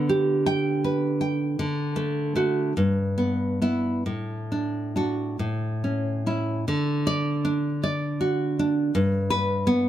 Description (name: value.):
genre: romantic piece for solo classical guitar.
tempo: 44-56 BPM (dotted quarters).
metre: 6/8.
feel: rubato.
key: D major.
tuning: A4 = 440 Hz.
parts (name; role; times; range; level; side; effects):
nylon-string guitar; solo; 0.0-9.9 s; G2 to G5; -22 LUFS; right 1 dB; none.
room: light reverb.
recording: close, detailed microphones.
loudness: -23 LUFS.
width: side -11 dB against mid.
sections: 0.0-6.7 A section; 6.7-9.9 B section.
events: none.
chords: 0.0 G/D; 1.6 D; 2.8 Em/G; 4.1 D/A; 5.4 A; 6.7 D; 8.9 Em/G (rootless).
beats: 0.48 | 1.60 2.77 | 4.06 5.41 | 6.69 7.84 | 8.95.